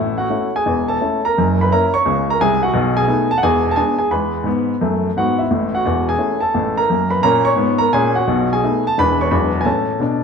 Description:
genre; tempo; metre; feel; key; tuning
jazz, stride piano; 173 BPM; 4/4; swing 65% on 8ths; A major; A4 = 439 Hz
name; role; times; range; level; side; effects
clear baby grand piano; solo; 0.0-10.2 s; E1 to C#6; -14 LUFS; equal; none
room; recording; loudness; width
wet recital hall reverb, RT60 1.4 s; dark, warm production; -14 LUFS; side -6 dB against mid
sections
0.0-10.2 A section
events
none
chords
0.0 A; 1.4 F#7; 2.7 B7; 3.4 E7; 4.1 E; 5.5 A; 6.9 F#; 8.3 B7; 9.0 E7; 9.3 E9; 9.7 A

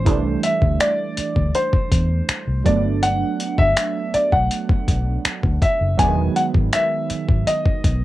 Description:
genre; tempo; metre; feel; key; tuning
contemporary R&B; 81 BPM; 4/4; straight; unclear; A4 = 439 Hz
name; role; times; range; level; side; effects
warm grand piano; melody; 0.0-8.0 s; C5 to G#5; -22 LUFS; left 1 dB; cassette tape
warm analog keys; accompaniment; 0.0-8.0 s; D#3 to D4; -25 LUFS; right 7 dB; chorus, cassette tape
vintage muted fingered electric bass; bass; 0.0-8.0 s; E1 to E2; -21 LUFS; left 1 dB; none
dusty soul sampler-style drum kit; drums; 0.1-8.0 s; finger snaps, hi-hat, kick drum; -20 LUFS; left 1 dB; overdrive
room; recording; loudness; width
light reverb; home recording on cassette; -17 LUFS; side -15 dB against mid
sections
0.0-8.0 A section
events
none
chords
0.1 C6; 2.7 Gmaj7; 6.0 Emaj7

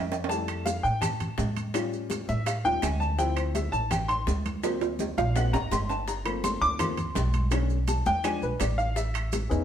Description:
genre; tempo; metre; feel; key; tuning
Afro-Cuban jazz; 166 BPM; 4/4; straight; F major; A4 = 440 Hz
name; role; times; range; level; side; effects
warm upright piano; accompaniment; 0.0-9.6 s; D3 to D6; -29 LUFS; left 1 dB; none
upright bass; bass; 0.0-9.6 s; G1 to A2; -29 LUFS; equal; none
bongos; percussion; 0.1-9.5 s; none; -38 LUFS; left 5 dB; none
maracas; percussion; 0.1-9.6 s; none; -42 LUFS; right 6 dB; none
timbales; percussion; 0.1-9.5 s; none; -34 LUFS; right 8 dB; none
congas; percussion; 0.3-9.5 s; none; -36 LUFS; equal; none
claves; percussion; 0.5-9.3 s; none; -44 LUFS; right 7 dB; none
room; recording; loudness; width
moderate stone room reverb, RT60 1.1 s; band playing live in one room; -25 LUFS; side -9 dB against mid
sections
0.3-9.6 A section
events
drum fill 0.0-0.3, 4.6-6.1; upright piano solo 0.0-9.6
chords
0.3 Fmaj9; 1.7 Aaug7; 3.2 Dm9; 4.6 Daug7; 6.1 Gm11; 7.5 Bm9; 8.2 E7b9; 9.0 Amaj9#11

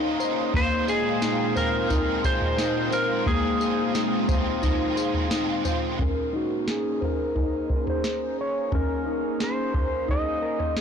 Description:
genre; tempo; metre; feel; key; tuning
dream pop; 88 BPM; 4/4; straight; Bb minor; A4 = 440 Hz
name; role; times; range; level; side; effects
biting overdriven guitar; accompaniment; 0.0-6.0 s; Bb2 to F4; -32 LUFS; right 2 dB; tremolo, ensemble chorus
phased analog pad; sustained chords; 0.0-10.8 s; Bb2 to Eb5; -30 LUFS; right 2 dB; phaser, chorus, low-pass filter
mellow electric guitar; arpeggios; 0.0-10.8 s; Bb3 to C5; -28 LUFS; left 5 dB; lush chorus, low-pass filter, tape echo
soft vintage rhythm box; drums; 0.2-10.8 s; kick drum, snare drum, tambourine, toms; -27 LUFS; right 1 dB; none
clean lap steel guitar; melody; 0.6-10.7 s; Gb4 to Eb5; -28 LUFS; right 1 dB; low-pass filter, tape echo
room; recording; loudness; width
light reverb; blown-out, overdriven recording, overdrive; -22 LUFS; side -7 dB against mid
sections
0.0-6.0 A section; 6.0-10.8 B section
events
filter sweep 6.0-10.8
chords
0.0 Bbm11; 0.5 Fm7/Bb; 6.0 Bbm11

